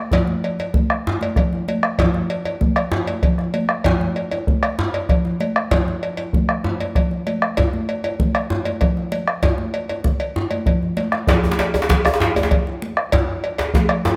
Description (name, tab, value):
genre	west african traditional, West African drum ensemble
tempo	129 BPM (dotted quarters)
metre	12/8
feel	straight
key	none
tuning	none
part	bombo	percussion	0.1-14.0 s	none	-22 LUFS	equal	none
part	congas	percussion	0.1-13.9 s	none	-26 LUFS	equal	none
part	cowbell	percussion	0.1-14.0 s	none	-27 LUFS	equal	none
part	djembe	percussion	0.1-14.2 s	none	-27 LUFS	equal	none
part	djembe	percussion	11.3-14.2 s	none	-22 LUFS	equal	none
room	moderate recital hall reverb, RT60 1.7 s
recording	close, detailed microphones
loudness	-20 LUFS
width	mono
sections	0.0-11.3 A section; 11.3-14.2 B section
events	drum fill 10.7-11.3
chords	none